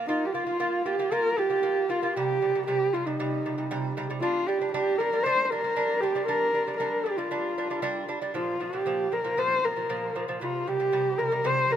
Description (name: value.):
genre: mongolian traditional, Mongolian folk.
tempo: 116 BPM.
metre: 4/4.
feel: straight.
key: Bb zhi mode.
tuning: A4 = 440 Hz.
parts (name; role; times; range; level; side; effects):
lute; arpeggios; 0.0-11.8 s; Bb2 to F4; -31 LUFS; right 3 dB; none.
dark horsehead fiddle; melody; 0.1-11.8 s; Eb4 to C5; -26 LUFS; equal; none.
room: moderate huge ambient reverb, RT60 7.5 s.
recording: none.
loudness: -24 LUFS.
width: side -9 dB against mid.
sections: 0.1-11.8 A section.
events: none.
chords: 0.1 Bb5; 2.2 C5; 4.2 G5; 8.4 Bb5; 10.4 C5.